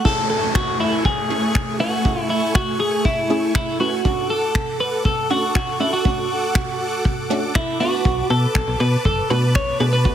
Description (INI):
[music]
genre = dance-pop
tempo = 120 BPM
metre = 4/4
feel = straight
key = A major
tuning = A4 = 440 Hz
[part]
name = twelve-string electric guitar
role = melody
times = 0.0-10.1 s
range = E4 to C#5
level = -21 LUFS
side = equal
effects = none
[part]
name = wide unison pluck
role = accompaniment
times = 0.0-10.1 s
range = A3 to B4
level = -26 LUFS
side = right 1 dB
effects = sidechain pumping
[part]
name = supersaw chords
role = sustained chords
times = 0.0-10.1 s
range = A3 to D6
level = -26 LUFS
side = equal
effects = sidechain pumping
[part]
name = unplugged drum kit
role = drums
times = 0.1-10.1 s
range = finger snaps, kick drum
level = -22 LUFS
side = equal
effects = none
[part]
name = downlifter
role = sound effects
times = 0.1-4.1 s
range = none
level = -29 LUFS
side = left 1 dB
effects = none
[part]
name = slap-like FM bass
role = bass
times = 8.1-10.1 s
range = F#1 to B2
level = -19 LUFS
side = equal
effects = sidechain pumping
[sound]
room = light reverb, small room ambience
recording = heavily compressed radio sound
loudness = -17 LUFS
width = side -10 dB against mid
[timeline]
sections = 0.1-10.1 A section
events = none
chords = 0.1 Amaj7; 4.1 Dmaj7; 7.8 Bm7